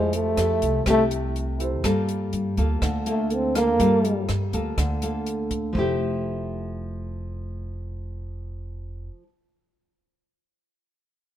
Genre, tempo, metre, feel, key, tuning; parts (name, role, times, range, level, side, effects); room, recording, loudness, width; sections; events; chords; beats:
bossa nova; 123 BPM; 4/4; straight; F major; A4 = 438 Hz
breathy trombone; melody; 0.0-4.3 s; Ab3 to C4; -22 LUFS; right 1 dB
nylon-string guitar; accompaniment; 0.0-9.3 s; C3 to A4; -27 LUFS; left 1 dB
warm baby grand piano; accompaniment; 0.0-1.9 s; E4 to C5; -34 LUFS; right 3 dB
upright bass; bass; 0.0-9.1 s; F1 to G2; -28 LUFS; equal
compact cocktail drum kit; drums; 0.1-5.9 s; hi-hat, kick drum, rim click; -31 LUFS; equal
light reverb; minimal, uncompressed stereo recording; -22 LUFS; side -11 dB against mid
0.0-5.7 A section; 5.7-9.7 B section
trombone solo 0.0-5.7
0.0 Fmaj9; 1.8 Gm9; 5.7 Fmaj9
0.38 0.87 1.35 | 1.84 2.33 2.82 3.31 | 3.80 4.28 4.77 5.26 | 5.75 6.24 6.73 7.21 | 7.70 8.19 8.68 9.17